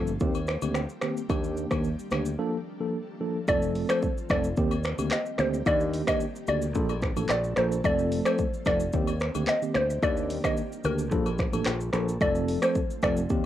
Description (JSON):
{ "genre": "afrobeats", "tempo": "110 BPM", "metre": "4/4", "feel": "straight", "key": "Bb major", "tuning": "A4 = 439 Hz", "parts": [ { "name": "mellow tine electric piano", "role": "accompaniment", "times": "0.0-13.5 s", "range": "Eb3 to A4", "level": "-30 LUFS", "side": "equal", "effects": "medium stereo tremolo, plate reverb" }, { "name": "ethereal airy pad", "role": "sustained chords", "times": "0.1-13.5 s", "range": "Eb3 to G4", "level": "-42 LUFS", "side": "equal", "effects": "none" }, { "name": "fingered electric bass", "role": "bass", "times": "0.0-13.5 s", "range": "F1 to Eb2", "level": "-31 LUFS", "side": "equal", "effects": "none" }, { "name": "deep house drum kit", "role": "drums", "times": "0.1-13.4 s", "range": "finger snaps, handclaps, hi-hat, kick drum, rim click, shaker", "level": "-30 LUFS", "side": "equal", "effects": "overdrive" }, { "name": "agogo bells and woodblock", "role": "percussion", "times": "0.3-13.2 s", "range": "none", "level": "-40 LUFS", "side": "left 11 dB", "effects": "none" }, { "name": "mallet-like synth pluck", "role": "melody", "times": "3.5-13.1 s", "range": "Bb4 to Eb5", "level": "-28 LUFS", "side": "equal", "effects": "chorus, cassette tape, tape echo, plate reverb" } ], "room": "moderate small room reverb, RT60 0.5 s", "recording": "home recording on cassette", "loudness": "-24 LUFS", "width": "side -12 dB against mid", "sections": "0.0-3.5 A section; 3.5-13.5 B section", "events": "break 2.4-3.5", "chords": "0.2 Cm7; 1.3 Ebmaj7; 2.4 Bbmaj7; 3.5 F; 4.6 Cm7; 5.7 Ebmaj7; 6.8 Bbmaj7; 7.8 F; 8.9 Cm7; 10.0 Ebmaj7; 11.1 Bbmaj7; 12.2 F" }